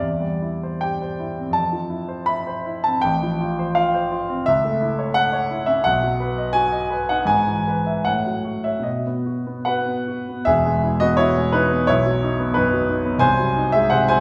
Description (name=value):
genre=classical, romantic character piece for solo piano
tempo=70-91 BPM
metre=2/4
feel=rubato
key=E major from 4.5 s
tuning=A4 = 440 Hz
part: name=warm grand piano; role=solo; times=0.0-14.2 s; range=E1 to B5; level=-21 LUFS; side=equal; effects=none
room=wet recital hall reverb, RT60 1.5 s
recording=heard from further back in the room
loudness=-21 LUFS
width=mono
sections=0.0-10.5 A section; 10.5-14.2 B section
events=none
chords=0.0 C/E; 1.6 Fmaj7; 3.0 F/A; 4.5 A/C#; 5.8 B; 7.3 E/G#; 8.0 F#m/A; 8.9 B; 10.5 E; 11.9 B; 13.2 G#7/B#